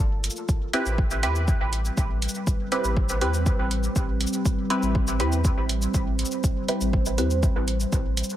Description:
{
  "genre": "dub techno",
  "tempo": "121 BPM",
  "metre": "4/4",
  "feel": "straight",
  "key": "unclear",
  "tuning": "A4 = 439 Hz",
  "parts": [
    { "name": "deep dark ambient pad", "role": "sustained chords", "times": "0.0-8.4 s", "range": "G3 to C5", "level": "-30 LUFS", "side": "right 1 dB", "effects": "chorus, built-in reverb, sidechain pumping" },
    { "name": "pure sine sub bass", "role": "bass", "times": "0.0-8.2 s", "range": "G1 to E2", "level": "-26 LUFS", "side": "equal", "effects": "sidechain pumping" },
    { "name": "electronic hi-hat and shaker", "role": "drums", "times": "0.2-8.4 s", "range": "none", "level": "-31 LUFS", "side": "equal", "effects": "none" },
    { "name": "electronic kick drum", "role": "drums", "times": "0.5-8.0 s", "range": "none", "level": "-24 LUFS", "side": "equal", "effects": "overdrive" },
    { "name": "filtered dub chord stab", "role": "stabs", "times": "0.7-7.4 s", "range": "C4 to B4", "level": "-29 LUFS", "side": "right 1 dB", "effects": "chorus, phaser, sidechain pumping, dub echo" }
  ],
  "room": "light reverb, digital ambience",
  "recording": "none",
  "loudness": "-22 LUFS",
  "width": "side -12 dB against mid",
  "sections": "0.0-8.4 A section",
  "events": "none",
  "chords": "0.5 Am9"
}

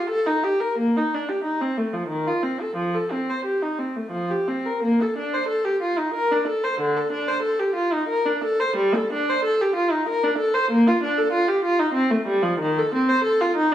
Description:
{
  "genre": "classical, baroque-style suite movement for unaccompanied viola",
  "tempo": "83-98 BPM",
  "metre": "3/4",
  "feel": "rubato",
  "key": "Bb major",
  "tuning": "A4 = 440 Hz",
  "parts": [
    { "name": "rich viola", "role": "solo", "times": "0.0-13.7 s", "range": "D3 to C5", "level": "-20 LUFS", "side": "equal", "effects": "none" }
  ],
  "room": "moderate recital hall reverb, RT60 1.3 s",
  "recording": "minimal, uncompressed stereo recording",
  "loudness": "-20 LUFS",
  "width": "side -11 dB against mid",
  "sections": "0.0-4.8 A section; 4.8-13.7 A section",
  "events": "none",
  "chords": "none"
}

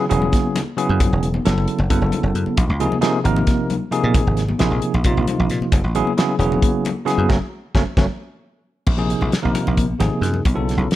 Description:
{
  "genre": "electric jazz fusion",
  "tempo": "267 BPM (eighths)",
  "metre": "7/8",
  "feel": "straight",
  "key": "Bb minor",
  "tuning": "A4 = 444 Hz",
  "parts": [
    { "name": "bell-like tine electric piano", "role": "accompaniment", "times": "0.0-10.9 s", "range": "C3 to Bb4", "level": "-20 LUFS", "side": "right 1 dB", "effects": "medium stereo tremolo" },
    { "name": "dry thumbed slap bass", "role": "bass", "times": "0.1-10.9 s", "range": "Fb1 to Bb2", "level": "-20 LUFS", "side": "equal", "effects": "none" },
    { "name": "damped 70s drum kit", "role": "drums", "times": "0.1-11.0 s", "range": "crash cymbal, hi-hat, kick drum, snare drum", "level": "-21 LUFS", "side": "equal", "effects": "none" },
    { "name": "congas", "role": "percussion", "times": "0.2-10.9 s", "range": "none", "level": "-27 LUFS", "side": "left 3 dB", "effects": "none" }
  ],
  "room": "light reverb, studio ambience",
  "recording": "dark, warm production",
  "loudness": "-16 LUFS",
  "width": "side -14 dB against mid",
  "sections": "0.0-8.9 A section; 8.9-11.0 B section",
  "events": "band accent 7.3-8.9; drum fill 8.2-8.9",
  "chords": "0.0 Gbm9; 2.6 Bb7sus2; 5.7 Gbm9; 8.9 Bb9sus4; 10.5 B9sus4"
}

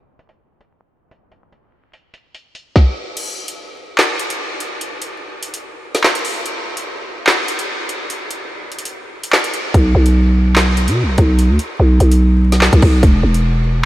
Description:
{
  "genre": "hip hop, drill",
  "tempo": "146 BPM",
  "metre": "4/4",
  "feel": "half-time",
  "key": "B minor",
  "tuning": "A4 = 445 Hz",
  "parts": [
    { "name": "drill drum kit", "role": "drums", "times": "0.2-13.4 s", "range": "crash cymbal, handclaps, hi-hat, kick drum, snare drum", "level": "-17 LUFS", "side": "equal", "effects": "none" },
    { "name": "growling 808-style bass", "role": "bass", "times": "9.7-13.9 s", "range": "E1 to B2", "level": "-11 LUFS", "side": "equal", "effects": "none" }
  ],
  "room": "moderate huge ambient reverb, RT60 8.1 s",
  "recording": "dreamy mix soaked in reverb, vinyl crackle, low-pass filter",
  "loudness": "-13 LUFS",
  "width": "side -16 dB against mid",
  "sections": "0.0-3.2 A section; 3.2-13.9 B section",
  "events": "kick muted 3.2-9.7",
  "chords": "none"
}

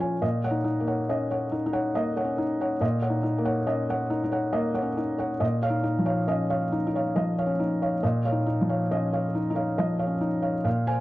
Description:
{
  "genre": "neoclassical minimalist piano",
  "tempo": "69 BPM",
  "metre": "3/4",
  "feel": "rubato",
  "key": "unclear",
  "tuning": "A4 = 440 Hz",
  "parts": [
    { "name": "felt-muted upright piano", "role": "solo", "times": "0.0-11.0 s", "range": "Bb2 to Ab5", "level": "-24 LUFS", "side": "equal", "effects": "none" }
  ],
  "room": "little or no reverb",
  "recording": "dry, close 1970s-style studio recording, faint mains hum",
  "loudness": "-24 LUFS",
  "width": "side -16 dB against mid",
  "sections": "0.0-11.0 A section",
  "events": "none",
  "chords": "0.2 Ebm7/Bb; 5.4 Dbadd9/Bb"
}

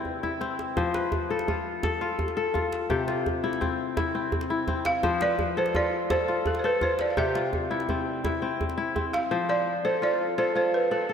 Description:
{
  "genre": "west african traditional, West African string and xylophone music",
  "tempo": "112 BPM (dotted quarters)",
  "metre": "12/8",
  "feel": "straight",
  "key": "F lydian",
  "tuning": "A4 = 440 Hz",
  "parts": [
    { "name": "balafon", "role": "melody", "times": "0.0-0.2, 4.9-11.1 s", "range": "A4 to F5", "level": "-27 LUFS", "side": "right 2 dB", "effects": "diffuse ambient delay" },
    { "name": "kora", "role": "arpeggios", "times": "0.0-11.1 s", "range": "C3 to C5", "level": "-27 LUFS", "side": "left 4 dB", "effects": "diffuse ambient delay" },
    { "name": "djembe", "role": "percussion", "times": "0.1-9.3 s", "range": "none", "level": "-32 LUFS", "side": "right 1 dB", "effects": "none" }
  ],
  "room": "wet lush hall reverb, RT60 2.8 s",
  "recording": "dreamy mix soaked in reverb",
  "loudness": "-24 LUFS",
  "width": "side -7 dB against mid",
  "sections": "0.0-9.3 A section; 9.3-11.1 A section",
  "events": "drum fill 0.0-0.8",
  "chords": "0.0 C; 0.8 F; 2.9 C; 5.0 F; 7.2 C; 9.3 F"
}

